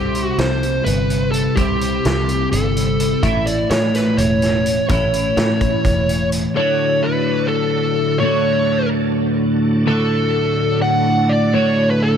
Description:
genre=psychedelic rock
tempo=253 BPM (eighths)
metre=7/8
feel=straight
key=unclear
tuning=A4 = 441 Hz
part: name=fuzz lead guitar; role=melody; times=0.0-12.2 s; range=G4 to F#5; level=-20 LUFS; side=equal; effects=distortion, analog delay
part: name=twelve-string electric guitar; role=riff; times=0.0-12.2 s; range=D2 to C5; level=-18 LUFS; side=equal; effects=rotary speaker, double-tracked left and right
part: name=picked electric bass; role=bass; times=0.0-6.5 s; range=E1 to A2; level=-22 LUFS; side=equal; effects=none
part: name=vintage drum kit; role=drums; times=0.1-6.4 s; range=hi-hat, kick drum, snare drum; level=-23 LUFS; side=equal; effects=none
part: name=bright tonewheel organ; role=sustained chords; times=6.6-12.2 s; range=F#3 to A4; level=-30 LUFS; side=right 6 dB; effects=slow rotary speaker, chorus vibrato
room=light reverb, small room ambience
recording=none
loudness=-15 LUFS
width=side -8 dB against mid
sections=0.0-6.6 A section; 6.6-12.2 B section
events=none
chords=0.0 C; 3.2 A; 6.6 D

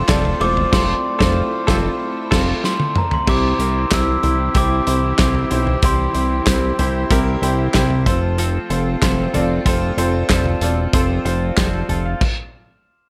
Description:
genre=piano-driven pop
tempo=94 BPM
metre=4/4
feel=straight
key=C major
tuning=A4 = 439 Hz
part: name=glockenspiel with rubber mallets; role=melody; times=0.0-7.1 s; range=Bb5 to E6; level=-26 LUFS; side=equal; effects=none
part: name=clear concert grand piano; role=accompaniment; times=0.0-12.4 s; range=C3 to C6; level=-25 LUFS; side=equal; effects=none
part: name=warm studio string section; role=sustained chords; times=0.0-12.2 s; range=E3 to G4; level=-34 LUFS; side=equal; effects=none
part: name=direct-recorded clean electric guitar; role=riff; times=0.0-12.2 s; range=C3 to A4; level=-29 LUFS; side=equal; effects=analog chorus
part: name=fat analog bass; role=bass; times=0.0-12.2 s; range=E1 to C2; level=-22 LUFS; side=equal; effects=none
part: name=loose indie drum kit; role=drums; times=0.1-12.4 s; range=crash cymbal, handclaps, hi-hat, kick drum, ride cymbal, snare drum, toms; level=-22 LUFS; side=equal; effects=none
room=light reverb, studio ambience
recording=none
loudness=-18 LUFS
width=mono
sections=0.0-3.3 A section; 3.3-13.1 B section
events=band accent 0.7-3.3; drum fill 2.6-3.3; stop 12.2-13.1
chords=0.0 F; 3.3 C; 8.1 F

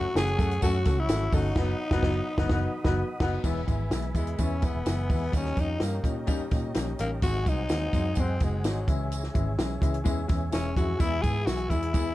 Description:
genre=uptempo 1960s-style soul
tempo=127 BPM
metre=4/4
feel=straight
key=E major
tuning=A4 = 440 Hz
part: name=growling tenor saxophone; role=melody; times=0.0-12.1 s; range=F#3 to G#4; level=-31 LUFS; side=left 2 dB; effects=none
part: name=bright upright piano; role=accompaniment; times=0.0-12.1 s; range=E3 to B5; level=-33 LUFS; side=left 3 dB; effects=none
part: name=mellow tonewheel organ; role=sustained chords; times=0.0-12.1 s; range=G#4 to D#6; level=-40 LUFS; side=right 1 dB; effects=chorus vibrato
part: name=vintage muted fingered electric bass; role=bass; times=0.0-12.1 s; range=E1 to A#2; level=-30 LUFS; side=equal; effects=none
part: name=compact cocktail drum kit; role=drums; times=0.2-12.1 s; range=crash cymbal, hi-hat, kick drum, snare drum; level=-28 LUFS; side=equal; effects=none
part: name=tambourine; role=percussion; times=0.2-12.1 s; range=none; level=-47 LUFS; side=right 8 dB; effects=none
room=light reverb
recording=dark, warm production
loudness=-24 LUFS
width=side -16 dB against mid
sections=0.0-3.4 A section; 3.4-12.1 B section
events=band accent 1.6-3.4; tenor saxophone solo 3.4-12.1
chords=0.0 F#m; 1.6 B/F#; 3.4 E; 5.3 D#7; 7.2 G#7; 8.9 C#m; 11.0 E

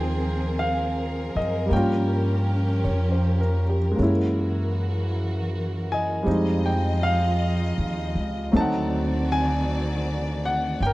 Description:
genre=jazz ballad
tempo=53 BPM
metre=4/4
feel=swing 68% on 8ths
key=unclear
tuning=A4 = 442 Hz
part: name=clear concert grand piano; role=accompaniment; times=0.0-10.9 s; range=F#3 to A5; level=-25 LUFS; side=equal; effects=none
part: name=warm symphonic string section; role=sustained chords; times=0.0-10.9 s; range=Eb3 to Eb5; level=-29 LUFS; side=equal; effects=none
part: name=upright bass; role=bass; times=0.0-10.9 s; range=G1 to G2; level=-25 LUFS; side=equal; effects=none
room=little or no reverb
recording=dry, close 1970s-style studio recording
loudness=-21 LUFS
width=side -18 dB against mid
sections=0.0-10.9 A section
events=none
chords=0.0 Abmaj9; 1.7 Gm7b5; 4.0 Gb9; 6.3 Fm9; 8.5 D7b9

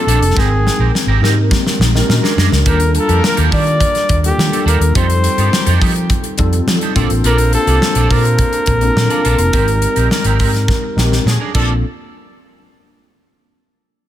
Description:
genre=polished 1980s jazz-funk pop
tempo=105 BPM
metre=4/4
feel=straight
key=Bb major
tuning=A4 = 440 Hz
part: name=breathy flugelhorn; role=melody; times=0.0-11.3 s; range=G4 to D5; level=-18 LUFS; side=equal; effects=ping-pong delay
part: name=warm horn section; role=second line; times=0.0-11.7 s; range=D3 to C5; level=-27 LUFS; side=equal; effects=none
part: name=mellow tine electric piano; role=accompaniment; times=0.0-11.9 s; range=G3 to A5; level=-20 LUFS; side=left 2 dB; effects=medium stereo tremolo, ensemble chorus
part: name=electric guitar at the edge of break-up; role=riff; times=0.0-11.7 s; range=C4 to D5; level=-24 LUFS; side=right 9 dB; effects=analog chorus
part: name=vintage muted fingered electric bass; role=bass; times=0.1-11.8 s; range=F1 to F3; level=-14 LUFS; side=equal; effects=none
part: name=modern studio drum kit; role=drums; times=0.1-11.7 s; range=crash cymbal, hi-hat, kick drum, snare drum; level=-17 LUFS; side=left 1 dB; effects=gated reverb
room=small room ambience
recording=none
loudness=-11 LUFS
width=side -12 dB against mid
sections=0.0-2.7 A section; 2.7-11.8 B section; 11.8-14.1 C section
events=drum fill 0.4-2.7, 10.7-11.8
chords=0.4 Abmaj9; 2.1 Bb7alt; 2.7 Ebmaj9#11; 4.9 F9; 7.0 Bbmaj7; 9.5 Abmaj9; 11.3 Bb7#9; 11.5 Bbmaj7; 11.8 N.C.

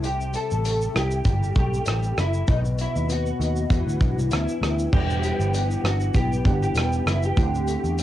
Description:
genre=indie pop, bedroom pop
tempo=98 BPM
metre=4/4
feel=swing 55% on 16ths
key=E minor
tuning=A4 = 441 Hz
part: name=electric guitar through a small old amp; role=melody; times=0.0-8.0 s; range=D#4 to A4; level=-28 LUFS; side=right 1 dB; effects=ensemble chorus, cassette tape, tape echo
part: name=nylon-string guitar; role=accompaniment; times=0.0-8.0 s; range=B2 to G4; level=-30 LUFS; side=left 7 dB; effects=ensemble chorus, vibrato effect, cassette tape
part: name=vintage muted picked electric bass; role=bass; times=0.0-8.0 s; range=E1 to E2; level=-24 LUFS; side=equal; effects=none
part: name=loose indie drum kit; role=drums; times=0.0-8.0 s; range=crash cymbal, hi-hat, kick drum, rim click, shaker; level=-25 LUFS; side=equal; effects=cassette tape
part: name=warbly lo-fi synth keys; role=accompaniment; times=4.9-8.0 s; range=G3 to F#5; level=-31 LUFS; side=right 8 dB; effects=chorus, cassette tape
room=light reverb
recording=home recording on cassette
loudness=-20 LUFS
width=side -13 dB against mid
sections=0.0-4.9 A section; 4.9-8.0 A section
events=none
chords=0.0 C6; 2.5 B; 3.7 Em7; 7.4 D7sus4

